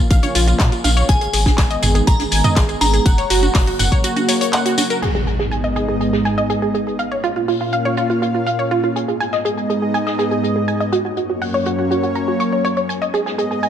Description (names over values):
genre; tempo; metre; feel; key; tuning
progressive house; 122 BPM; 4/4; straight; G# dorian; A4 = 440 Hz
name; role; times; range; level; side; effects
glassy synth bell; melody; 0.0-4.9 s; G#5 to A#5; -24 LUFS; left 1 dB; chorus, tremolo, sidechain pumping, ping-pong delay
lush unison pad; sustained chords; 0.0-13.7 s; F#2 to E#5; -21 LUFS; equal; chorus, sidechain pumping
analog pluck; arpeggios; 0.0-13.7 s; E#4 to C#6; -20 LUFS; right 2 dB; chorus, sidechain pumping, digital delay
round analog bass; bass; 0.1-3.9 s; F#1 to A#2; -19 LUFS; equal; sidechain pumping
electronic kick drum; drums; 0.1-4.0 s; none; -15 LUFS; equal; none
house drum kit; drums; 0.1-5.1 s; crash cymbal, handclaps, hi-hat, tambourine; -22 LUFS; left 2 dB; low-pass filter on hats, low-pass filter on snare, low-pass filter on perc, low-pass filter on cymbals
jazz brush drum kit; drums; 0.1-13.7 s; hi-hat, snare drum; -31 LUFS; left 4 dB; sidechain pumping on hats, high-pass filter on hats, low-pass filter on hats, high-pass filter on snare, low-pass filter on snare, high-pass filter on room, low-pass filter on room
electronic congas and toms; percussion; 0.2-4.9 s; none; -23 LUFS; right 3 dB; sidechain pumping on perc, sidechain pumping on toms
impact; sound effects; 5.0-7.0 s; none; -24 LUFS; equal; none
room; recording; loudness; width
moderate lush hall reverb, RT60 1.9 s; none; -15 LUFS; side -9 dB against mid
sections
0.0-5.0 A section; 5.0-13.7 B section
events
impact 5.0-7.0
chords
0.0 A#m; 1.1 G#m; 3.1 F#; 5.0 G#m; 7.0 A#m; 9.0 G#m; 10.9 F#; 12.9 G#m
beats
0.11 0.60 | 1.09 1.58 2.07 2.56 | 3.06 3.55 4.04 4.53 | 5.02 5.52 6.01 6.50 | 6.99 7.48 7.97 8.47 | 8.96 9.45 9.94 10.43 | 10.93 11.42 11.91 12.40 | 12.89 13.38